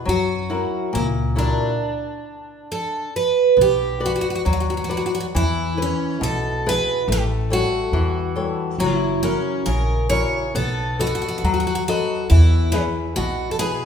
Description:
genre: fado-style ballad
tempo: 69 BPM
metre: 2/4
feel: rubato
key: B minor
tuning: A4 = 440 Hz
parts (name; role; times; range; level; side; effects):
- flamenco guitar; accompaniment; 0.0-13.9 s; A#2 to D#5; -24 LUFS; left 4 dB; none
- picked twelve-string acoustic guitar; melody; 0.1-13.9 s; C#4 to C#5; -22 LUFS; right 3 dB; none
- upright bass; bass; 0.1-13.7 s; F#1 to F#2; -21 LUFS; equal; none
room: moderate recital hall reverb, RT60 1.6 s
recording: minimal, uncompressed stereo recording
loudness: -18 LUFS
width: side -7 dB against mid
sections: 0.0-3.6 A section; 3.6-13.9 A section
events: none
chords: 0.1 F#7; 1.8 N.C.; 3.6 Bm; 5.3 E; 7.1 A7; 8.8 F#7; 10.5 B7; 12.3 E

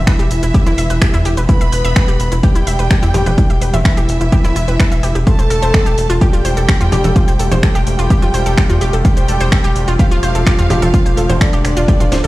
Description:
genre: melodic techno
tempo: 127 BPM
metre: 4/4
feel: straight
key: unclear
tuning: A4 = 441 Hz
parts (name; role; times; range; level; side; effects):
- wide unison pluck; arpeggios; 0.0-12.3 s; E4 to E5; -22 LUFS; equal; cassette tape, sidechain pumping, tape echo
- tight sequencer bass; bass; 0.0-12.3 s; D1 to E2; -16 LUFS; equal; sidechain pumping
- fat analog lead; melody; 0.1-12.3 s; D4 to B4; -21 LUFS; equal; cassette tape, sidechain pumping, tape echo
- warm symphonic violin section; second line; 0.1-12.3 s; D5 to B5; -25 LUFS; right 2 dB; sidechain pumping, tape echo
- electronic kick drum; drums; 0.1-12.0 s; none; -12 LUFS; equal; overdrive
- techno drum kit; drums; 0.1-12.3 s; congas, finger snaps, hi-hat, snare drum; -21 LUFS; right 1 dB; overdrive
- deep dark ambient pad; sustained chords; 6.4-12.3 s; A3 to G4; -27 LUFS; left 1 dB; chorus, built-in reverb, sidechain pumping
room: little or no reverb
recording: played on a big sound system in a bare room, stone room reverb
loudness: -11 LUFS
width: side -17 dB against mid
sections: 0.0-12.3 A section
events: drum fill 12.1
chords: 0.0 Em; 5.3 Fadd9

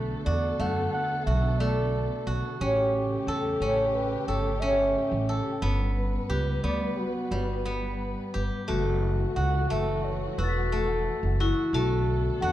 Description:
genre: contemporary instrumental, chamber music in an uneven meter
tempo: 178 BPM (eighths)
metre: 9/8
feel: straight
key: B minor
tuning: A4 = 439 Hz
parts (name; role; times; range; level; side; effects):
- dark studio string section; sustained chords; 0.0-12.5 s; C#3 to B4; -35 LUFS; left 2 dB; none
- steel-string zither; arpeggios; 0.0-12.5 s; G3 to A4; -29 LUFS; equal; none
- upright bass; bass; 0.0-12.5 s; E1 to F#2; -28 LUFS; right 1 dB; none
- dark flugelhorn; melody; 0.3-12.5 s; F#4 to F#5; -33 LUFS; right 1 dB; none
- vibraphone with hard mallets; second line; 8.7-12.5 s; E4 to F#4; -31 LUFS; left 4 dB; none
- large celesta; texture; 10.4-12.1 s; E6 to B6; -38 LUFS; left 7 dB; none
room: light reverb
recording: dark, warm production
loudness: -24 LUFS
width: side -13 dB against mid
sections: 0.0-12.5 A section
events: none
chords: 0.0 Bm7; 2.6 A7; 5.6 Gmaj7; 8.7 F#m7; 11.7 Bm7

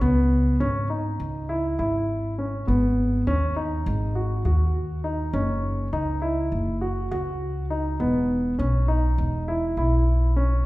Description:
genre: contemporary instrumental, chamber music in an uneven meter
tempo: 203 BPM (eighths)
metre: 9/8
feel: straight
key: unclear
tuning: A4 = 440 Hz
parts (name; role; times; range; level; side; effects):
- warm concert grand piano; arpeggios; 0.0-10.6 s; B3 to F#4; -25 LUFS; equal; none
- upright bass; bass; 0.0-10.6 s; E1 to D#2; -24 LUFS; equal; none
room: wet recital hall reverb, RT60 1.4 s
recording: heard from further back in the room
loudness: -22 LUFS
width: side -18 dB against mid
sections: 0.0-10.7 A section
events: none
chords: 0.0 C#m7; 2.7 G#m7; 5.3 F#5; 8.0 E5

